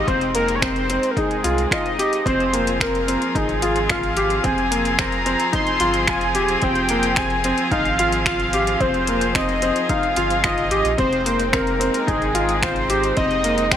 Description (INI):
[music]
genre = piano and strings electronica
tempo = 110 BPM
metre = 4/4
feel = straight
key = F minor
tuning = A4 = 440 Hz
[part]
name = warm velvety synth lead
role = melody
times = 0.0-13.8 s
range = Ab4 to C6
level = -22 LUFS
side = equal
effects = chorus, shimmer reverb
[part]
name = muted string quartet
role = sustained chords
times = 0.0-13.8 s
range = F3 to Ab4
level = -26 LUFS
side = left 1 dB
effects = sidechain pumping, shimmer reverb
[part]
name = warm sub bass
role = bass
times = 0.0-13.8 s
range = Eb1 to C2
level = -28 LUFS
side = equal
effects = sidechain pumping
[part]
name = felt-muted upright piano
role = riff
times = 0.1-13.8 s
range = Bb3 to G4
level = -22 LUFS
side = left 1 dB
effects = shimmer reverb
[part]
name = deep house drum kit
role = drums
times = 0.1-13.8 s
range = finger snaps, hi-hat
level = -25 LUFS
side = left 1 dB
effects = overdrive
[part]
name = electronic kick drum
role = drums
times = 0.1-13.8 s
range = none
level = -28 LUFS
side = equal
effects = overdrive
[sound]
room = moderate huge ambient reverb, RT60 3.6 s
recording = none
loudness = -17 LUFS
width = side -9 dB against mid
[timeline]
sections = 0.0-13.8 A section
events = none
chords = 0.0 Fmadd9